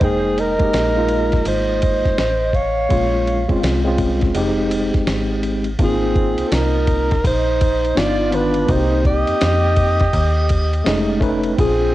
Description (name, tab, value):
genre	hip hop, jazz-hop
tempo	83 BPM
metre	4/4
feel	swing 63% on 16ths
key	F minor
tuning	A4 = 440 Hz
part	breathy alto saxophone	melody	0.0-11.9 s	Ab4 to Eb5	-20 LUFS	left 1 dB	cassette tape
part	mellow silver concert flute	second line	0.0-11.9 s	C4 to F5	-24 LUFS	right 6 dB	cassette tape, analog delay
part	tine electric piano	accompaniment	0.0-11.9 s	Eb3 to G5	-20 LUFS	equal	overdrive, medium stereo tremolo, cassette tape
part	metallic FM bass	bass	0.0-11.9 s	F1 to F2	-21 LUFS	equal	tube saturation
part	dusty soul sampler-style drum kit	drums	0.0-11.8 s	hi-hat, kick drum, ride cymbal, snare drum	-22 LUFS	equal	cassette tape
room	light reverb, digital ambience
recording	home recording on cassette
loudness	-15 LUFS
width	side -15 dB against mid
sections	0.0-5.8 A section; 5.8-11.9 B section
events	none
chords	0.0 Fm11; 2.9 Bbm9; 4.4 Fm9; 5.8 Ab69; 8.0 G7b13; 8.7 Cm7; 10.9 F7alt